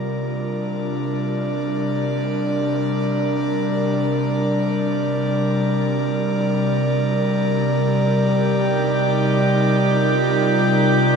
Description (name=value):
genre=ambient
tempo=free time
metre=none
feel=none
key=unclear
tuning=A4 = 440 Hz
part: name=airy breathy pad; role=sustained chords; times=0.0-11.2 s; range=C3 to D5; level=-18 LUFS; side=equal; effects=chorus
part: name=drifting glass-harmonics texture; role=texture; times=8.2-11.2 s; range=G4 to G5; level=-23 LUFS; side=right 1 dB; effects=chorus, built-in reverb
room=wet cathedral reverb, RT60 5.2 s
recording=dark, warm production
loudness=-18 LUFS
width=side -6 dB against mid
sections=0.0-11.2 A section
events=none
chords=0.0 Gm/C; 7.7 Cm11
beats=free time